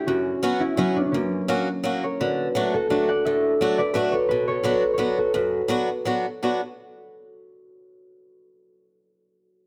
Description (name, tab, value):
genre	musette waltz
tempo	170 BPM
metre	3/4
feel	rubato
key	B minor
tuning	A4 = 438 Hz
part	concert harp	melody	0.0-7.4 s	F#3 to F#5	-25 LUFS	equal	none
part	picked swing-style acoustic guitar	accompaniment	0.1-6.6 s	F#2 to F#4	-28 LUFS	equal	none
room	light reverb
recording	close, detailed microphones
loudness	-23 LUFS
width	mono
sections	0.0-6.4 A section; 6.4-7.5 B section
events	none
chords	0.1 F#sus4; 1.1 F#; 2.2 D; 4.3 Bm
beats	| 0.07 0.42 0.78 | 1.13 1.49 1.85 | 2.21 2.56 2.91 | 3.27 3.61 3.96 | 4.30 4.65 5.00 | 5.34 5.70 6.06 | 6.42 6.77 7.12